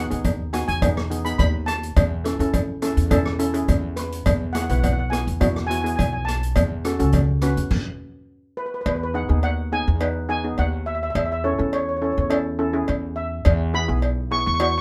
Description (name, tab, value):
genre	calypso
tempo	104 BPM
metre	4/4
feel	straight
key	unclear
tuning	A4 = 440 Hz
part	steel pan	melody	0.0-14.8 s	B4 to C#6	-29 LUFS	equal	none
part	steel pan	accompaniment	0.0-14.8 s	B3 to B4	-28 LUFS	equal	none
part	upright bass	bass	0.0-14.8 s	B1 to E2	-26 LUFS	equal	none
part	street-band drum kit	drums	0.1-7.8 s	crash cymbal, hi-hat, kick drum, rim click	-27 LUFS	equal	none
part	cowbell	percussion	0.2-14.7 s	none	-29 LUFS	equal	none
room	moderate small room reverb, RT60 0.5 s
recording	none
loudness	-22 LUFS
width	mono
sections	0.0-8.9 A section; 8.9-14.8 A section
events	stop 7.7-8.9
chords	0.0 G#m7; 2.0 A/E; 4.3 E; 6.6 F#m; 8.9 G#m; 11.2 A/E; 13.5 E